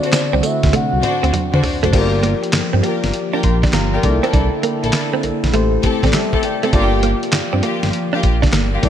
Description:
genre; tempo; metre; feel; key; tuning
R&B, new jack swing; 100 BPM; 4/4; swing 67% on 16ths; G dorian; A4 = 436 Hz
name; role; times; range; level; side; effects
soft octave-layered synth lead; melody; 0.0-1.6 s; D5 to F#5; -23 LUFS; left 2 dB; chorus, tremolo, ping-pong delay
FM electric piano; accompaniment; 0.0-8.9 s; A3 to C6; -23 LUFS; left 4 dB; chorus
chorused pulse-width pad; sustained chords; 0.0-8.9 s; C3 to A4; -24 LUFS; right 1 dB; none
direct-recorded clean electric guitar; riff; 0.0-8.9 s; F#3 to D4; -23 LUFS; right 6 dB; ensemble chorus
warm studio string section; stabs; 0.0-8.9 s; Bb3 to C5; -23 LUFS; left 3 dB; ping-pong delay
dusty soul sampler-style drum kit; drums; 0.0-8.9 s; crash cymbal, handclaps, hi-hat, kick drum, snare drum, tambourine, toms; -19 LUFS; equal; gated reverb
smooth synth bass; bass; 0.3-8.9 s; F#1 to D3; -18 LUFS; equal; none
room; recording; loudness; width
light reverb; bright 1980s-style digital production; -14 LUFS; side -10 dB against mid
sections
0.0-1.9 A section; 1.9-8.9 B section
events
drum fill 0.7-1.9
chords
0.0 D7; 1.9 Gm7; 4.0 C13; 5.5 Am7; 6.7 Gm7

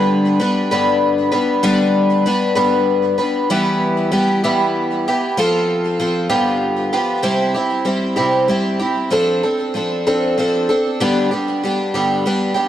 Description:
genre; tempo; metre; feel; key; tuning
rock; 64 BPM (dotted quarters); 6/8; straight; G mixolydian; A4 = 439 Hz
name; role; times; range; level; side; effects
picked twelve-string acoustic guitar; solo; 0.0-12.7 s; G2 to B4; -15 LUFS; equal; digital delay
room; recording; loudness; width
light reverb; dark, warm production; -15 LUFS; side -11 dB against mid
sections
0.0-7.2 A section; 7.2-12.7 B section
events
none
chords
0.0 G; 3.5 Em; 5.4 F; 6.3 G7; 7.2 C; 9.1 F6; 11.0 G

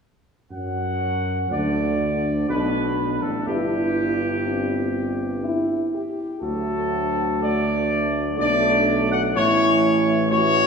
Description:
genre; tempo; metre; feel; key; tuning
classical; 61 BPM; 3/4; straight; D major; A4 = 440 Hz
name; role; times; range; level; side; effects
mellow trumpet section; melody; 0.5-10.7 s; G4 to F#5; -23 LUFS; left 1 dB; none
warm trombone section; sustained chords; 0.5-10.7 s; G2 to A3; -27 LUFS; right 1 dB; none
warm tuba; bass; 0.5-10.7 s; G1 to F#2; -26 LUFS; right 1 dB; none
mellow French horn section; sustained chords; 1.5-10.7 s; C4 to G4; -25 LUFS; left 1 dB; none
room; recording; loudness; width
wet concert hall reverb, RT60 1.9 s; small room ambience; -19 LUFS; side -5 dB against mid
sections
0.5-10.7 A section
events
none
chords
0.5 D; 3.5 C/G; 6.4 D; 9.4 A

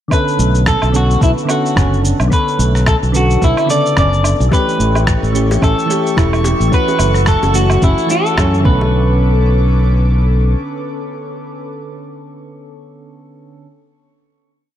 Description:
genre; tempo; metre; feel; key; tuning
sunset chillout; 109 BPM; 4/4; swing 57% on 16ths; B minor; A4 = 440 Hz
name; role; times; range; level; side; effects
clean electric guitar; melody; 0.1-11.7 s; E4 to D5; -18 LUFS; left 1 dB; lush chorus, ping-pong delay
soft electric-piano-like synth keys; accompaniment; 0.1-13.7 s; C#3 to C#5; -20 LUFS; equal; chorus, auto-pan, low-pass filter
electronic kick drum; drums; 0.1-8.8 s; none; -15 LUFS; equal; overdrive
electronic woodblock, shaker and rim click; drums; 0.1-8.6 s; none; -22 LUFS; right 1 dB; none
steel pan; arpeggios; 0.4-9.2 s; A3 to G4; -25 LUFS; right 3 dB; ping-pong delay
modern bright fingered electric bass; bass; 0.4-10.5 s; E1 to F#2; -13 LUFS; equal; none
airy breathy pad; sustained chords; 4.5-11.7 s; C#4 to D6; -25 LUFS; left 1 dB; chorus, vintage 12-bit sampler grit
bongos; percussion; 4.5-8.9 s; none; -28 LUFS; left 2 dB; none
drifting glass-harmonics texture; texture; 5.2-8.9 s; C#6; -28 LUFS; right 1 dB; chorus, built-in reverb
room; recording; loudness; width
light reverb, digital ambience; dark, warm production; -11 LUFS; side -11 dB against mid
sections
0.1-8.9 groove; 8.9-11.1 final hit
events
filter sweep on synth keys 0.1-8.9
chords
0.1 Bm9; 4.5 A7; 6.7 F#m7; 8.7 Bm9

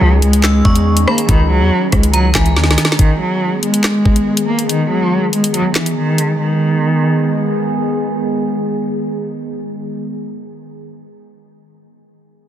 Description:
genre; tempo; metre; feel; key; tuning
hip hop, drill; 141 BPM; 4/4; half-time; G# minor; A4 = 438 Hz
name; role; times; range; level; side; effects
dark cello; melody; 0.0-7.6 s; D#3 to A#3; -16 LUFS; equal; low-pass filter, tape echo
warbly tape-like pad; sustained chords; 0.0-10.1 s; D#3 to G#4; -20 LUFS; right 1 dB; chorus, built-in reverb, low-pass filter
hard-hitting 808-style bass; bass; 0.0-2.8 s; C#2 to E2; -13 LUFS; equal; none
drill drum kit; drums; 0.2-6.3 s; handclaps, hi-hat, kick drum, rim click, snare drum; -15 LUFS; equal; overdrive
metallic FM bell; second line; 0.4-2.6 s; G#5 to E6; -24 LUFS; left 1 dB; chorus, tape echo
room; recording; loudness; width
digital ambience; dense, heavily limited modern master; -12 LUFS; side -11 dB against mid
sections
0.0-3.0 A section; 3.0-6.4 B section; 6.4-9.8 C section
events
drum fill 2.6-3.0; kick muted 4.7-6.4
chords
0.0 C#madd9; 3.0 G#m

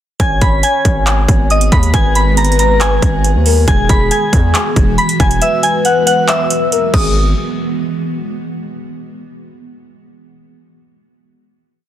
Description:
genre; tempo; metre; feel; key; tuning
hip hop, trap; 138 BPM; 4/4; half-time; G# minor; A4 = 441 Hz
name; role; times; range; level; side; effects
soft synth bell; melody; 0.2-7.1 s; D#5 to B6; -16 LUFS; equal; chorus, digital delay
soft octave-layered synth lead; second line; 0.2-7.1 s; G#4 to C#5; -19 LUFS; left 4 dB; chorus, phaser, digital delay
granular cloud pad; sustained chords; 1.0-7.1 s; D#3 to G#4; -21 LUFS; right 2 dB; built-in reverb
distorted 808-style bass; bass; 0.2-7.3 s; E1 to E2; -14 LUFS; equal; distortion
trap drum kit; drums; 0.2-7.0 s; crash cymbal, handclaps, hi-hat, kick drum; -15 LUFS; equal; overdrive
room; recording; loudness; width
little or no reverb; dense, heavily limited modern master; -10 LUFS; side -11 dB against mid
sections
0.2-7.2 hook; 7.2-8.9 final hit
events
kick muted 5.4-7.2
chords
0.2 G#madd9; 3.7 Eadd9; 6.9 G#madd9; 7.2 N.C.

